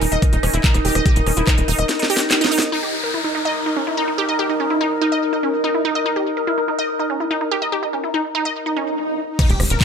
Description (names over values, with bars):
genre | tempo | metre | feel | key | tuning
psychedelic trance | 144 BPM | 4/4 | straight | unclear | A4 = 440 Hz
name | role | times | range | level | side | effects
overtone-sweeping drone | sustained chords | 0.0-9.8 s | Eb4 to Eb5 | -24 LUFS | equal | chorus, built-in reverb, phaser, sidechain pumping
wide unison pluck | riff | 0.0-9.8 s | Db4 to Eb5 | -22 LUFS | right 1 dB | auto-pan, sidechain pumping, digital delay
tight sequencer bass | bass | 0.0-1.8, 9.5-9.8 s | Eb1 to Fb1 | -20 LUFS | equal | tube saturation
drum and bass drum kit | drums | 0.0-2.8, 9.4-9.8 s | crash cymbal, handclaps, hi-hat, rim click, snare drum | -21 LUFS | equal | low-pass filter on hats, studio reverb, low-pass filter on snare, low-pass filter on cymbals
warbly tape-like pad | texture | 0.0-9.0 s | Eb4 to Ab5 | -25 LUFS | equal | chorus, built-in reverb, sidechain pumping
electronic kick drum | drums | 0.2-1.6, 9.4-9.8 s | none | -16 LUFS | equal | studio reverb
downlifter, swell and impact | sound effects | 2.7-9.8 s | none | -26 LUFS | equal | none
room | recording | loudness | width
light reverb, digital ambience | none | -17 LUFS | side -6 dB against mid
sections
0.0-2.7 A section; 2.7-9.4 B section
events
drum fill 1.9-2.7; swell 8.7-9.4; impact 9.4-9.8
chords
0.0 Eb5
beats
0.22 0.64 | 1.06 1.47 1.89 2.31 | 2.72 3.14 3.56 3.97 | 4.39 4.81 5.22 5.64 | 6.06 6.47 6.89 7.31 | 7.72 8.14 8.56 8.97 | 9.39 9.81